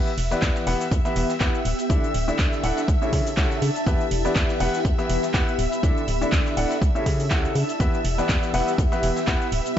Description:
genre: piano house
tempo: 122 BPM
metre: 4/4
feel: swing 55% on 16ths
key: E dorian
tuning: A4 = 441 Hz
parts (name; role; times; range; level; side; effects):
- string machine, violins; sustained chords; 0.0-9.8 s; E5 to E6; -32 LUFS; equal; ensemble chorus, sidechain pumping
- bright grand piano; riff; 0.0-9.8 s; C#3 to F#5; -26 LUFS; left 1 dB; sidechain pumping, ping-pong delay
- granular cloud pad; texture; 0.8-9.8 s; B3 to B5; -30 LUFS; left 1 dB; built-in reverb, sidechain pumping
- house drum kit; drums; 0.1-9.7 s; handclaps, hi-hat, shaker; -31 LUFS; equal; none
- organ-like FM bass; bass; 0.2-9.8 s; D1 to C#3; -26 LUFS; equal; sidechain pumping
- breakbeat sampler-style drum kit; drums; 0.2-9.8 s; hi-hat, snare drum; -38 LUFS; right 1 dB; sidechain pumping on hats, high-pass filter on hats, high-pass filter on snare, high-pass filter on room
- electronic kick drum; drums; 0.4-9.8 s; none; -23 LUFS; equal; none
room: little or no reverb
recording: nothing above 7.8 kHz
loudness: -20 LUFS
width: side -10 dB against mid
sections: 0.0-9.8 A section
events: none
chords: 0.0 Em; 1.7 Dsus2; 2.9 A7/C#; 3.9 Em; 5.6 Dsus2; 6.8 A7/C#; 7.8 Em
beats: 0.42 0.92 1.41 | 1.90 2.39 2.88 3.37 | 3.87 4.36 4.85 5.34 | 5.83 6.33 6.82 7.31 | 7.80 8.29 8.78 9.28 | 9.77

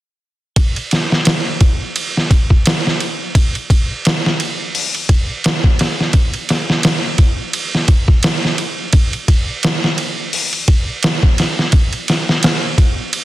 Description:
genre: trip hop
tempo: 86 BPM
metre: 4/4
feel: swing 57% on 16ths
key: none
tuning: none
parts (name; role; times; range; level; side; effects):
- trip hop sampler-style drum kit; drums; 0.6-13.2 s; hi-hat, kick drum, ride cymbal, snare drum; -13 LUFS; equal; none
room: light reverb, digital ambience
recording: dense, heavily limited modern master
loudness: -13 LUFS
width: side -16 dB against mid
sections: 0.6-13.2 A section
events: none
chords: none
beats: | 0.56 1.26 1.96 2.66 | 3.35 4.05 4.75 5.45 | 6.14 6.84 7.54 8.24 | 8.94 9.63 10.33 11.03 | 11.73 12.42 13.12

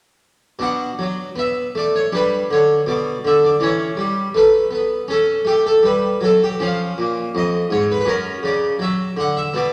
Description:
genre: classical, baroque-style suite movement for harpsichord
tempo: 81 BPM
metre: 4/4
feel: rubato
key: B minor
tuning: A4 = 440 Hz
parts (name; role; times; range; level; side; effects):
- harpsichord; solo; 0.6-9.7 s; E#2 to F#5; -18 LUFS; equal; none
room: wet recital hall reverb, RT60 1.6 s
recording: none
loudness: -18 LUFS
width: mono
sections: 0.6-9.7 A section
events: none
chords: 0.6 Bm; 2.1 G; 3.6 C#dim/E; 6.6 C#; 8.1 F#5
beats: | 0.59 1.35 2.11 2.85 | 3.59 4.34 5.07 5.82 | 6.60 7.34 8.06 8.80 | 9.53

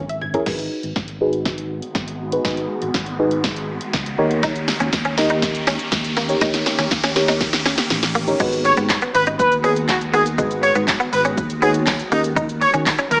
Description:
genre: dance-pop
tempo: 121 BPM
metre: 4/4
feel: straight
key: G# minor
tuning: A4 = 440 Hz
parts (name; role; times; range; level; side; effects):
- fingered electric bass; bass; 0.0-13.2 s; G#1 to D#3; -26 LUFS; equal; sidechain pumping
- punchy analog drum machine; drums; 0.1-13.2 s; crash cymbal, handclaps, hi-hat, kick drum, shaker, snare drum, toms; -22 LUFS; equal; none
- deep mellow chord stab; accompaniment; 0.3-12.9 s; A#3 to D#5; -22 LUFS; equal; chorus, sidechain pumping, low-pass filter
- granular cloud pad; sustained chords; 1.4-13.2 s; C#3 to G4; -29 LUFS; equal; built-in reverb, sidechain pumping, low-pass filter
- riser; sound effects; 1.9-8.4 s; none; -30 LUFS; equal; none
- direct-recorded clean electric guitar; riff; 4.4-13.1 s; G#3 to D#4; -22 LUFS; equal; ensemble chorus, low-pass filter
- tambourine; percussion; 4.9-13.0 s; none; -36 LUFS; equal; none
- clear horn section; melody; 8.6-13.2 s; D#4 to C#5; -18 LUFS; equal; tape echo
room: light reverb, digital ambience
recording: small speaker sound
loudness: -16 LUFS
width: side -37 dB against mid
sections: 0.5-8.4 A section; 8.4-13.2 B section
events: drum fill 0.0-0.5, 0.5-8.4; build-up 0.5-8.4; filter sweep 0.5-8.4; riser 1.9-8.4; drop 8.4-13.2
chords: 0.5 G#m7; 4.2 D#7; 8.4 G#m7; 12.1 D#7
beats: | 0.47 0.96 1.46 1.95 | 2.45 2.94 3.44 3.94 | 4.43 4.93 5.42 5.92 | 6.42 6.91 7.41 7.90 | 8.40 8.90 9.39 9.89 | 10.38 10.88 11.38 11.87 | 12.37 12.86

